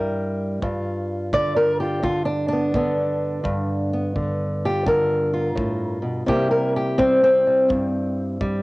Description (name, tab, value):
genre	acoustic country blues, solo or duo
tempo	85 BPM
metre	4/4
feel	swing 67% on 8ths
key	G mixolydian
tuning	A4 = 440 Hz
part	fingerpicked old ladder-braced acoustic guitar	melody	0.0-8.6 s	G2 to D5	-19 LUFS	equal	cassette tape
part	kick drum	drums	0.6-8.6 s	none	-32 LUFS	equal	none
room	moderate spring reverb, RT60 2.0 s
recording	home recording on cassette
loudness	-19 LUFS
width	side -22 dB against mid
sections	0.0-8.6 A section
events	steel-string acoustic guitar solo 0.0-8.6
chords	0.0 C7 (rootless); 0.6 G7; 6.3 C7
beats	| 0.62 1.33 2.04 2.74 | 3.45 4.16 4.87 5.58 | 6.28 6.99 7.70 8.41